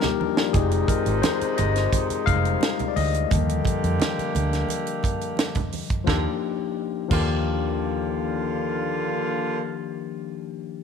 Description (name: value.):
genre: lush 1970s-style soul.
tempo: 87 BPM.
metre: 4/4.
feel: straight.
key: Eb major.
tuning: A4 = 440 Hz.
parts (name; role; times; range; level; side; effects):
overdriven tine electric piano; accompaniment; 0.0-10.8 s; D3 to F5; -26 LUFS; left 12 dB; none.
tight funk drum kit; drums; 0.0-7.3 s; crash cymbal, hi-hat, kick drum, snare drum; -26 LUFS; right 2 dB; none.
congas; percussion; 0.0-7.3 s; none; -34 LUFS; right 10 dB; none.
warm horn section; stabs; 0.5-9.6 s; C3 to G4; -29 LUFS; right 3 dB; slapback echo.
vintage muted fingered electric bass; bass; 0.5-10.3 s; F1 to F2; -25 LUFS; right 2 dB; none.
room: light reverb, studio reverb.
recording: 1960s-style stereo with parts hard left and right.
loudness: -22 LUFS.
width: side -6 dB against mid.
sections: 0.5-6.1 A section; 6.1-8.8 B section.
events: drum fill 0.0-0.5; band accent 0.0-0.5; tine electric piano solo 0.5-6.1.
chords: 0.0 Ebmaj9; 0.5 Fm7; 3.3 Ebmaj9.